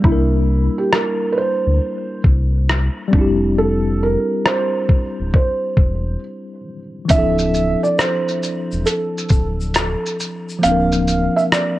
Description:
lo-fi hip hop; 68 BPM; 4/4; swing 66% on 16ths; D minor; A4 = 439 Hz
felt-muted upright piano; melody; 0.0-11.8 s; E4 to F5; -20 LUFS; right 3 dB; low-pass filter, analog delay
mellow tine electric piano; accompaniment; 0.0-11.8 s; E3 to Bb4; -21 LUFS; left 2 dB; medium stereo tremolo, cassette tape, low-pass filter
lo-fi sampler-style drum kit; drums; 0.0-11.8 s; hi-hat, kick drum, rim click, shaker; -17 LUFS; equal
sub bass with octave; bass; 0.1-11.3 s; D1 to D2; -19 LUFS; equal
tube shaker; percussion; 7.1-11.8 s; -38 LUFS; left 5 dB
light reverb; cassette tape; -15 LUFS; side -16 dB against mid
0.0-11.8 A section
break 0.0-7.1
0.0 C9; 3.1 Fsus2; 7.1 Dm9; 10.6 Bbadd9/D
| 0.05 0.93 1.81 2.69 | 3.58 4.46 5.34 6.22 | 7.11 7.99 8.87 9.75 | 10.63 11.52

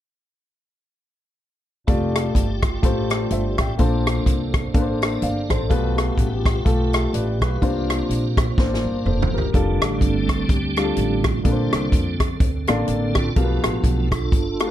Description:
uptempo gospel; 125 BPM; 4/4; swing 58% on 8ths; F major; A4 = 441 Hz
warm upright piano; accompaniment; 1.9-14.7 s; Bb2 to G5; -24 LUFS; left 3 dB
tonewheel organ; sustained chords; 1.9-14.7 s; D3 to A5; -28 LUFS; right 4 dB; slow rotary speaker, chorus vibrato
warm French horn section; sustained chords; 1.9-9.5 s; A3 to A4; -34 LUFS; left 1 dB
upright bass; bass; 1.9-14.7 s; F1 to F2; -24 LUFS; equal
natural country drum kit; drums; 1.9-14.7 s; hi-hat, kick drum, rim click, snare drum, toms; -21 LUFS; equal
light reverb; dark, warm production; -18 LUFS; side -12 dB against mid
1.9-9.5 A section; 9.5-14.7 B section
drum fill 8.6-9.5; tonewheel organ solo 9.5-14.7
1.9 F69; 3.8 Bbmaj9; 5.7 G9; 7.6 C9sus4; 9.5 F69; 11.5 Bbmaj9; 13.4 G9
| 1.88 2.36 2.84 3.31 | 3.79 4.27 4.75 5.23 | 5.71 6.18 6.66 7.14 | 7.62 8.10 8.58 9.06 | 9.54 10.02 10.49 10.97 | 11.45 11.93 12.41 12.89 | 13.37 13.85 14.33

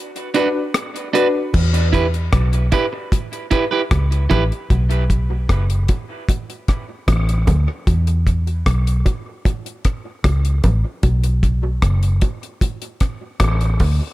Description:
dub reggae; 76 BPM; 4/4; straight; E dorian; A4 = 441 Hz
deep reggae drum kit; drums; 0.2-14.0 s; crash cymbal, hi-hat, kick drum, rim click; -19 LUFS; equal
electric guitar at the edge of break-up; accompaniment; 0.3-4.4 s; D4 to B4; -22 LUFS; right 4 dB; dub echo
dark upright piano; stabs; 0.4-1.4 s; D4 to B4; -25 LUFS; left 4 dB; high-pass filter, dub echo
vintage muted fingered electric bass; bass; 1.5-14.0 s; F#1 to E2; -16 LUFS; equal
bongos; percussion; 1.5-14.0 s; -29 LUFS; right 2 dB; high-pass filter on perc, dub echo
light reverb, small room ambience; -16 LUFS; side -17 dB against mid
0.0-1.5 A section; 1.5-14.1 B section
break 0.0-1.5; filter sweep 11.0-14.1
0.0 Bm; 1.5 Em; 4.7 B5; 7.9 E5; 11.0 B5
0.75 | 1.54 2.33 3.12 3.91 | 4.70 5.49 6.28 7.08 | 7.87 8.66 9.45 10.24 | 11.03 11.82 12.62 13.41

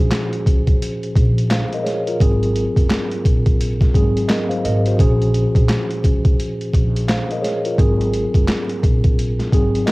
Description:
hip hop, boom-bap hip-hop; 86 BPM; 4/4; swing 60% on 16ths; Bb minor; A4 = 440 Hz
mellow tine electric piano; accompaniment; 0.0-9.9 s; Ab2 to F5; -21 LUFS; equal; medium stereo tremolo, cassette tape, high-pass filter, low-pass filter
upright bass; bass; 0.0-9.8 s; Gb1 to Db2; -20 LUFS; equal
boom bap sampler-style drum kit; drums; 0.1-9.9 s; handclaps, hi-hat, kick drum, snare drum; -17 LUFS; equal
little or no reverb; home recording on cassette, vinyl crackle; -15 LUFS; side -23 dB against mid
0.0-9.9 A section
0.0 Bbm7; 2.2 Ab7; 5.0 Bbm7; 7.8 Ab7
0.11 0.81 1.50 | 2.20 2.90 3.60 4.29 | 4.99 5.69 6.39 7.08 | 7.78 8.48 9.18 9.88

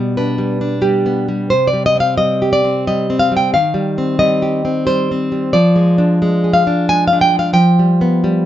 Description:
romantic piece for solo classical guitar; 89 BPM; 3/4; rubato; C minor; A4 = 440 Hz
nylon-string guitar; solo; 0.0-8.5 s; B2 to Ab5; -12 LUFS; equal
moderate studio reverb, RT60 0.9 s; band playing live in one room, nothing above 7.6 kHz; -12 LUFS; side -12 dB against mid
0.0-8.5 A section
0.0 G/B; 1.5 C5; 3.5 Cm/Eb; 5.5 Ddim/F; 7.6 G7/F
0.17 0.85 | 1.52 2.20 2.87 | 3.54 4.20 4.87 | 5.54 6.22 6.90 | 7.57 8.24

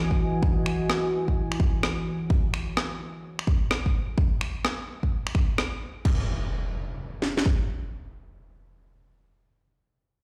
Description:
UK garage, two-step garage; 128 BPM; 4/4; swing 65% on 16ths; A4 = 441 Hz
deep dark ambient pad; texture; 0.0-2.3 s; E3 to G#5; -31 LUFS; equal; chorus, built-in reverb, sidechain pumping
house drum kit; drums; 0.1-7.6 s; kick drum, snare drum; -26 LUFS; equal; studio reverb
breakbeat sampler-style drum kit; drums; 0.7-6.2 s; crash cymbal, finger snaps, rim click; -32 LUFS; equal; studio reverb
impact; sound effects; 6.1-9.1 s; -35 LUFS; equal
light reverb; played on a big sound system in a bare room, stone room reverb; -27 LUFS; mono
0.0-6.0 A section; 6.0-9.8 B section
0.0 Emaj9; 2.1 Dmaj9; 4.2 N.C.
| 0.42 0.89 1.36 1.83 | 2.30 2.77 3.24 3.71 | 4.17 4.64 5.11 5.58 | 6.05 6.52 6.99 7.46 | 7.92 8.39 8.86

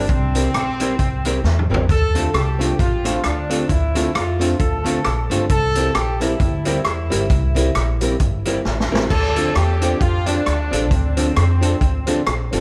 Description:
ska; 133 BPM; 4/4; swing 58% on 8ths; D minor; A4 = 440 Hz
clear horn section; melody; 0.0-12.5 s; C4 to A4; -26 LUFS; equal; analog delay
archtop guitar, miked and amplified; accompaniment; 0.0-12.6 s; F3 to Bb4; -27 LUFS; equal
upright bass; bass; 0.0-12.6 s; G1 to F2; -23 LUFS; equal
vintage drum kit; drums; 0.1-12.6 s; crash cymbal, hi-hat, kick drum, rim click, snare drum, toms; -24 LUFS; equal
dark upright piano; stabs; 2.1-12.6 s; Bb3 to A4; -29 LUFS; equal
moderate stone room reverb, RT60 1.2 s; band playing live in one room; -19 LUFS; mono
0.0-9.1 A section; 9.1-12.6 A section
drum fill 1.4-1.9, 8.7-9.1
0.0 C7; 1.9 Dm7; 5.5 C7; 9.1 Dm7
| 0.09 0.54 0.99 1.44 | 1.89 2.34 2.79 3.24 | 3.69 4.14 4.60 5.05 | 5.50 5.95 6.40 6.85 | 7.30 7.75 8.20 8.65 | 9.11 9.56 10.01 10.46 | 10.91 11.36 11.81 12.26

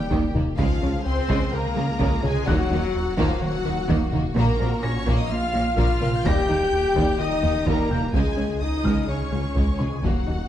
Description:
cinematic, hybrid orchestral and electronic film score; 127 BPM; 4/4; straight; A4 = 440 Hz
clear symphonic violin section; melody; 0.0-10.5 s; F5 to G6; -34 LUFS; left 1 dB
clear studio violin section; second line; 0.0-10.5 s; G3 to Ab4; -34 LUFS; left 3 dB
warm symphonic viola section; accompaniment; 0.0-10.5 s; F4 to G5; -32 LUFS; left 2 dB
warm French horn section; sustained chords; 0.0-10.5 s; F3 to G4; -27 LUFS; left 2 dB
swelling detuned saw bass; bass; 0.0-10.5 s; Eb1 to Db2; -32 LUFS; equal
soft round pluck; arpeggios; 0.1-10.4 s; Db3 to Bb4; -32 LUFS; left 2 dB; chorus, tape echo
round analog bass; riff; 0.1-10.4 s; Db2 to Bb3; -28 LUFS; right 1 dB
clear symphonic cello section; bass; 0.1-10.3 s; Db2 to Eb3; -29 LUFS; right 2 dB
rich symphonic double bass section; bass; 0.1-10.4 s; Bb1 to Eb2; -28 LUFS; right 2 dB
solo taiko drums; drums; 0.1-10.5 s; -28 LUFS; equal
felt-muted upright piano; texture; 2.5-10.5 s; Db6 to Bb6; -39 LUFS; left 2 dB; tape echo
moderate recital hall reverb, RT60 1.4 s; dark, warm production; -20 LUFS; side -11 dB against mid
0.0-10.5 A section
0.0 Eb; 0.6 Db; 2.5 Ebm; 4.4 Bbm; 6.3 Eb; 8.1 Db
0.11 | 0.58 1.06 1.53 2.00 | 2.47 2.95 3.42 3.89 | 4.36 4.84 5.31 5.78 | 6.25 6.73 7.20 7.67 | 8.14 8.62 9.09 9.56 | 10.03

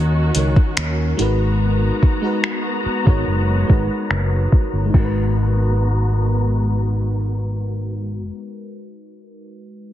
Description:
contemporary R&B; 72 BPM; 4/4; straight; G# minor; A4 = 440 Hz
FM electric piano with soft pad layer; accompaniment; 0.0-9.9 s; D#3 to D#5; -24 LUFS; equal; chorus
muted studio string section; sustained chords; 0.0-8.3 s; D#3 to A#5; -27 LUFS; left 2 dB
fingered electric bass; bass; 0.0-8.3 s; F#1 to D#2; -19 LUFS; equal
smooth R&B drum kit; drums; 0.3-5.1 s; crash cymbal, finger snaps, hi-hat, kick drum; -16 LUFS; equal; soft clipping on snare
little or no reverb; dense, heavily limited modern master, low-pass filter; -16 LUFS; side -12 dB against mid
0.0-4.9 A section; 4.9-8.3 B section
filter sweep 0.0-4.9
0.0 D#m7; 1.2 G#m9
0.77 | 1.61 2.44 3.27 4.11 | 4.94 5.77 6.61 7.44

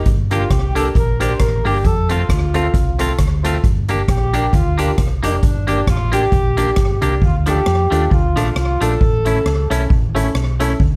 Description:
ska; 134 BPM; 4/4; swing 56% on 8ths; G minor; A4 = 440 Hz
hollow-body short-scale fingered electric bass; bass; 0.0-11.0 s; F1 to F2; -21 LUFS; equal
street-band drum kit; drums; 0.1-10.9 s; hi-hat, kick drum, rim click; -21 LUFS; equal
warm horn section; melody; 0.3-9.7 s; D4 to C5; -24 LUFS; equal; slapback echo
clean electric guitar; accompaniment; 0.3-10.7 s; F3 to G4; -26 LUFS; equal; slapback echo
dark upright piano; stabs; 0.3-10.7 s; C4 to Bb4; -26 LUFS; equal; slapback echo
light reverb; -16 LUFS; mono
0.0-7.2 A section; 7.2-11.0 B section
0.1 Gm; 1.8 F; 3.6 Gm; 7.2 Dm; 9.0 A
| 0.06 0.50 0.95 1.40 | 1.85 2.29 2.74 3.19 | 3.64 4.08 4.53 4.98 | 5.43 5.88 6.32 6.77 | 7.22 7.67 8.11 8.56 | 9.01 9.46 9.90 10.35 | 10.80

